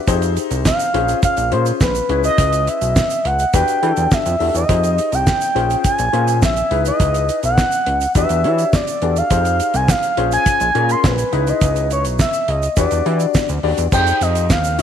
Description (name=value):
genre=early-eighties boogie funk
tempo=104 BPM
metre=4/4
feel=straight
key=unclear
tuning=A4 = 441 Hz
part: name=warm grand piano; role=accompaniment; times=0.1-14.8 s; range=Db4 to D5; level=-22 LUFS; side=left 11 dB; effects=none
part: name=fat analog bass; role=bass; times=0.1-14.8 s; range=Bb1 to E3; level=-20 LUFS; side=right 1 dB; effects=none
part: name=damped 70s drum kit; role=drums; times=0.1-14.8 s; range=crash cymbal, handclaps, hi-hat, kick drum, snare drum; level=-19 LUFS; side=right 1 dB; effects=none
part: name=tube shaker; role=percussion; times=0.1-14.8 s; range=none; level=-31 LUFS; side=right 15 dB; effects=none
part: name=expressive synth lead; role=melody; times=0.7-14.8 s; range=B4 to C6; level=-18 LUFS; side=right 1 dB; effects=chorus, tape echo
room=light reverb, small room ambience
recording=1960s-style stereo with parts hard left and right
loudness=-14 LUFS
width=side -9 dB against mid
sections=0.0-13.9 A section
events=none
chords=0.1 Fm9; 0.9 Bbm9; 2.1 Dbm7; 3.5 Em9; 4.7 Fm9; 5.6 Bbm9; 6.7 Dbm9; 8.2 Em9; 9.3 Fm9; 10.2 Bbm9; 11.3 Dbm9; 12.8 Em9; 13.9 Fm9